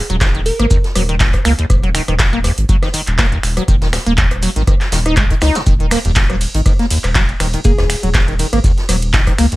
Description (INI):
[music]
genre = acid house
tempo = 121 BPM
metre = 4/4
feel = swing 55% on 16ths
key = Eb minor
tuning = A4 = 440 Hz
[part]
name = liquid acid bass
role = riff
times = 0.1-9.6 s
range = Eb2 to Eb4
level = -19 LUFS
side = equal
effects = overdrive, wide subtle chorus, cassette tape, sidechain pumping, tape echo
[part]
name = saturated sub bass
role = bass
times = 0.1-9.5 s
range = Eb1 to Db2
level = -17 LUFS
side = equal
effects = tube saturation, sidechain pumping
[part]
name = booming analog drum machine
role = drums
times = 0.1-9.6 s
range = finger snaps, handclaps, hi-hat, ride cymbal, rim click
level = -20 LUFS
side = equal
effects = none
[part]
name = electronic kick drum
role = drums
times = 0.2-9.4 s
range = none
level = -15 LUFS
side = equal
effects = none
[part]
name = swinging big-band drum kit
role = drums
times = 0.2-9.5 s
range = hi-hat, shaker, snare drum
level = -27 LUFS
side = right 1 dB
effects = sidechain pumping on hats, high-pass filter on hats, high-pass filter on snare, sidechain pumping on perc, high-pass filter on perc, high-pass filter on room
[part]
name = glassy wavetable pluck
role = melody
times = 0.5-1.2, 7.6-7.9 s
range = Ab4 to Bb4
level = -24 LUFS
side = equal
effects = chorus, tape echo
[sound]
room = little or no reverb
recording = none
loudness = -12 LUFS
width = side -18 dB against mid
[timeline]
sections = 0.0-9.6 A section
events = none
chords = none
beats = 0.21 0.71 1.20 | 1.70 2.19 2.69 3.19 | 3.68 4.18 4.67 5.17 | 5.67 6.16 6.66 7.15 | 7.65 8.14 8.64 9.14